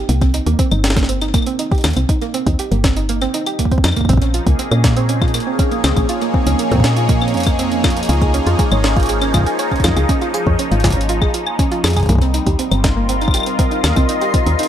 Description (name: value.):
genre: IDM.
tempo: 120 BPM.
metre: 4/4.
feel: straight.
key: C phrygian.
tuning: A4 = 440 Hz.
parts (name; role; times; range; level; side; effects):
soft round pluck; arpeggios; 0.0-14.7 s; Bb3 to Ab5; -21 LUFS; right 5 dB; chorus, cassette tape, ping-pong delay.
woody FM bass; bass; 0.0-14.6 s; G1 to Bb2; -17 LUFS; equal; tube saturation.
jungle sampler-style drum kit; drums; 0.1-14.7 s; claves, hi-hat, snare drum; -22 LUFS; left 1 dB; ping-pong delay.
electronic kick drum; drums; 0.2-14.4 s; none; -17 LUFS; equal; none.
phased analog pad; sustained chords; 4.1-14.7 s; F3 to Eb5; -20 LUFS; equal; phaser, chorus.
backwards swelling texture; texture; 12.7-14.7 s; C6; -28 LUFS; left 1 dB; built-in reverb.
room: digital ambience.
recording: none.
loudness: -13 LUFS.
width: side -10 dB against mid.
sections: 0.0-14.7 A section.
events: none.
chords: 0.0 Cm7; 4.1 Bbmadd9; 8.1 Db; 12.1 Cm7.